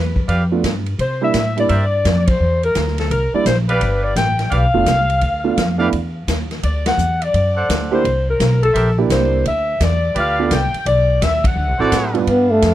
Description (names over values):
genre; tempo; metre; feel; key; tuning
jazz, big band swing; 170 BPM; 4/4; swing 65% on 8ths; G mixolydian; A4 = 440 Hz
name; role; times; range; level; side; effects
warm saxophone section; melody; 0.0-12.2 s; A4 to G5; -19 LUFS; left 2 dB; none
upright bass; bass; 0.0-12.7 s; F1 to C3; -19 LUFS; equal; none
swinging big-band drum kit; drums; 0.2-12.7 s; hi-hat, kick drum, ride cymbal, snare drum; -23 LUFS; equal; none
warm trumpet section; stabs; 0.3-12.2 s; F4 to F#5; -21 LUFS; right 2 dB; none
warm concert grand piano; accompaniment; 0.5-12.3 s; G2 to B4; -19 LUFS; right 8 dB; none
trombone with bucket mute; melody; 12.3-12.7 s; A3 to B3; -13 LUFS; equal; none
mellow saxophone section; sustained chords; 12.3-12.7 s; D4 to F5; -27 LUFS; left 1 dB; none
room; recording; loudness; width
little or no reverb; none; -14 LUFS; side -13 dB against mid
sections
0.0-12.3 A section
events
band accent 2.2, 6.8, 11.4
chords
0.0 G7; 1.0 C7; 3.8 G7; 6.6 D7; 8.0 C7; 9.5 G7; 11.6 D7